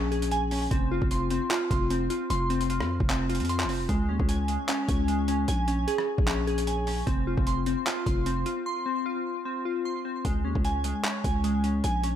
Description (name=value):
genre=hip hop, trap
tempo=151 BPM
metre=4/4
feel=half-time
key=F minor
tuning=A4 = 440 Hz
part: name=glassy digital keys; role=arpeggios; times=0.0-12.2 s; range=Ab3 to C6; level=-28 LUFS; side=left 1 dB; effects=chorus, ping-pong delay
part: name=growling 808-style bass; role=bass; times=0.0-12.2 s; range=F1 to F2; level=-29 LUFS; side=equal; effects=none
part: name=boom bap sampler-style drum kit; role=drums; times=0.1-12.1 s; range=handclaps, hi-hat, kick drum, rim click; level=-30 LUFS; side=equal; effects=overdrive
room=little or no reverb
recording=none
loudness=-25 LUFS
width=side -10 dB against mid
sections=0.0-10.2 A section; 10.2-12.2 B section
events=break 8.7-10.2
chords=0.0 Bbm7; 0.7 F5; 3.9 Db5; 5.5 Bbm7; 7.1 F5; 10.2 Db5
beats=0.32 | 0.71 1.11 1.51 1.91 | 2.30 2.70 3.10 3.49 | 3.89 4.29 4.69 5.08 | 5.48 5.88 6.28 6.67 | 7.07 7.47 7.87 8.26 | 8.66 9.06 9.45 9.85 | 10.25 10.65 11.04 11.44 | 11.84